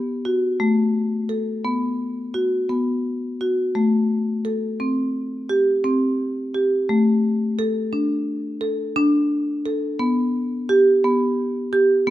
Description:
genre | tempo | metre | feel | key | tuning
contemporary instrumental, contemporary | 173 BPM (eighths) | 9/8 | straight | unclear | A4 = 440 Hz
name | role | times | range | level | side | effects
marimba with medium mallets | solo | 0.3-12.1 s | A3 to A4 | -19 LUFS | equal | none
room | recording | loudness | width
light reverb | close, detailed microphones | -19 LUFS | side -14 dB against mid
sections
0.0-12.1 A section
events
none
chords
none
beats
0.25 | 0.60 0.94 1.28 1.63 1.98 2.33 2.69 3.04 3.39 | 3.75 4.10 4.45 4.80 5.15 5.50 5.85 6.20 6.55 | 6.89 7.24 7.59 7.93 8.27 8.62 8.96 9.31 9.65 | 10.00 10.34 10.69 11.03 11.38 11.72 12.07

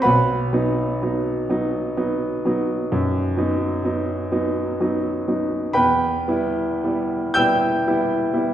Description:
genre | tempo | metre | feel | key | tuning
classical, romantic nocturne for solo piano | 35-44 BPM (dotted quarters) | 12/8 | rubato | unclear | A4 = 440 Hz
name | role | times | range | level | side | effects
clear grand piano | solo | 0.0-8.5 s | B1 to G6 | -19 LUFS | right 1 dB | none
room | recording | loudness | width
wet recital hall reverb, RT60 1.6 s | heard from further back in the room | -19 LUFS | side -11 dB against mid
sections
0.0-8.5 A section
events
none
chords
0.0 B; 5.8 Em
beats
| 0.05 1.49 2.91 4.32 | 5.76 7.37

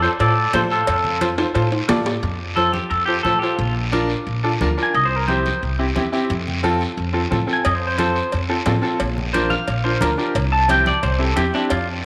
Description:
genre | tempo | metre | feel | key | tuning
latin, cumbia | 177 BPM | 4/4 | straight | F major | A4 = 440 Hz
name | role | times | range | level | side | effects
clean electric guitar | melody | 0.0-11.9 s | D4 to A5 | -22 LUFS | equal | spring reverb
bright upright piano | accompaniment | 0.0-11.7 s | C4 to D5 | -25 LUFS | equal | none
upright bass | bass | 0.0-12.1 s | Bb1 to A2 | -26 LUFS | equal | none
guiro | percussion | 0.0-12.0 s | none | -34 LUFS | equal | none
cowbell and timbales | percussion | 0.2-2.1, 7.6-11.9 s | none | -28 LUFS | equal | none
congas | percussion | 0.5-11.5 s | none | -32 LUFS | equal | none
room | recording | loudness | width
wet echo chamber reverb, RT60 2.0 s | none | -20 LUFS | mono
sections
0.0-2.2 A section; 2.2-12.1 B section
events
drum fill 1.4-2.2; clean electric guitar solo 2.2-12.1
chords
0.0 F; 3.6 Bb; 4.9 C; 6.3 F; 9.0 Bb; 10.4 C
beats
0.20 0.54 | 0.88 1.22 1.55 1.89 | 2.23 2.57 2.91 3.25 | 3.59 3.93 4.27 4.61 | 4.94 5.28 5.62 5.96 | 6.30 6.64 6.97 7.31 | 7.65 7.99 8.33 8.67 | 9.00 9.34 9.68 10.02 | 10.36 10.69 11.03 11.37 | 11.71 12.04

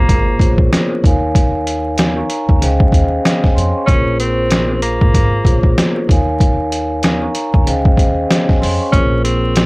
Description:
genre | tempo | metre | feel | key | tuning
hip hop, boom-bap hip-hop | 95 BPM | 4/4 | swing 59% on 16ths | Bb minor | A4 = 440 Hz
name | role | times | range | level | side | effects
warm tenor saxophone | melody | 0.0-9.7 s | Bb3 to Db4 | -19 LUFS | equal | high-pass filter, low-pass filter
vibraphone with soft mallets | accompaniment | 0.0-9.7 s | Bb3 to Db6 | -18 LUFS | equal | high-pass filter, low-pass filter
upright bass | bass | 0.0-9.7 s | Ab1 to F2 | -18 LUFS | equal | tube saturation
trip hop sampler-style drum kit | drums | 0.1-9.7 s | hi-hat, kick drum, snare drum | -13 LUFS | equal | overdrive
room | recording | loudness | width
little or no reverb | dry, gritty hardware recording, vinyl crackle | -11 LUFS | side -24 dB against mid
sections
0.0-9.7 A section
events
none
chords
0.0 Bbm7; 1.0 Eb7sus4; 2.6 Dbmaj7; 3.9 Bbm7; 6.1 Eb7sus4; 7.7 Dbmaj7; 8.9 Bbm7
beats
0.09 0.72 | 1.35 1.98 2.61 3.24 | 3.88 4.51 5.14 5.77 | 6.40 7.03 7.66 8.30 | 8.93 9.56

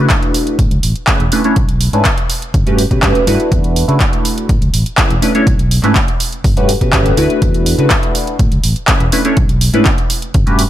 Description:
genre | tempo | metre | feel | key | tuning
filtered disco house | 123 BPM | 4/4 | straight | unclear | A4 = 440 Hz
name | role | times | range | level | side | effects
funky polysynth comp | accompaniment | 0.0-10.6 s | A3 to C#5 | -16 LUFS | equal | chorus, phaser, vintage 12-bit sampler grit, sidechain pumping, low-pass filter
fingered electric bass | bass | 0.0-10.6 s | E1 to C#3 | -15 LUFS | equal | tube saturation, sidechain pumping, low-pass filter
electronic kick drum | drums | 0.1-10.4 s | none | -15 LUFS | equal | none
house drum kit | drums | 0.1-10.7 s | handclaps, hi-hat | -18 LUFS | right 1 dB | overdrive, sidechain pumping on hats
room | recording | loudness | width
little or no reverb | none | -10 LUFS | side -12 dB against mid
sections
0.0-10.7 A section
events
filter sweep 0.0-10.7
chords
0.0 E9sus4; 0.6 Amaj9; 1.3 Bm11; 2.5 Gmaj9#11; 3.5 E9sus4; 4.5 Amaj9; 5.2 Bm11; 6.4 Gmaj9#11; 7.4 E9sus4; 8.4 Amaj9; 9.1 Bm11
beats
0.10 0.59 1.08 | 1.57 2.05 2.54 3.03 | 3.52 4.00 4.49 4.98 | 5.47 5.96 6.44 6.93 | 7.42 7.91 8.39 8.88 | 9.37 9.86 10.35

